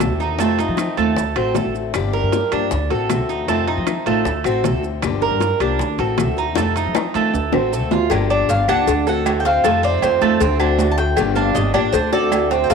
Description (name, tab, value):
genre	latin, Cuban son and guajira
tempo	156 BPM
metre	4/4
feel	straight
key	unclear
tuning	A4 = 440 Hz
part	picked old ladder-braced acoustic guitar	accompaniment	0.0-12.7 s	C3 to G4	-23 LUFS	left 10 dB	none
part	Cuban tres	arpeggios	0.0-12.7 s	A3 to Bb4	-21 LUFS	right 10 dB	none
part	upright bass	bass	0.0-12.7 s	G1 to F3	-23 LUFS	equal	tube saturation
part	bongos and cowbell	percussion	0.0-12.7 s	none	-25 LUFS	left 12 dB	none
part	claves	percussion	0.0-12.5 s	none	-35 LUFS	left 10 dB	none
part	maracas	percussion	0.0-12.7 s	none	-37 LUFS	right 14 dB	none
part	timbales and agogo bells	percussion	0.0-12.7 s	none	-27 LUFS	right 11 dB	none
part	Cuban tres	melody	8.1-12.7 s	Bb4 to A5	-20 LUFS	left 2 dB	none
room	moderate echo chamber reverb, RT60 2.1 s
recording	1960s-style stereo with parts hard left and right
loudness	-16 LUFS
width	side -6 dB against mid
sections	0.0-8.1 A section; 8.1-12.7 B section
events	drum fill 6.6-8.1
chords	0.4 F7; 1.2 D7; 1.9 Gm7; 2.7 D7; 3.5 F7; 4.3 D7; 5.0 Gm7; 5.8 D7; 6.6 F7; 7.3 D7; 8.1 Gm7; 8.9 D7; 9.6 F7; 10.4 D7; 11.2 Gm7; 11.9 D7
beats	0.01 | 0.39 0.78 1.17 1.55 | 1.94 2.33 2.71 3.10 | 3.48 3.87 4.25 4.64 | 5.03 5.41 5.80 6.18 | 6.57 6.95 7.34 7.72 | 8.11 8.49 8.88 9.26 | 9.64 10.02 10.41 10.79 | 11.17 11.55 11.94 12.32 | 12.70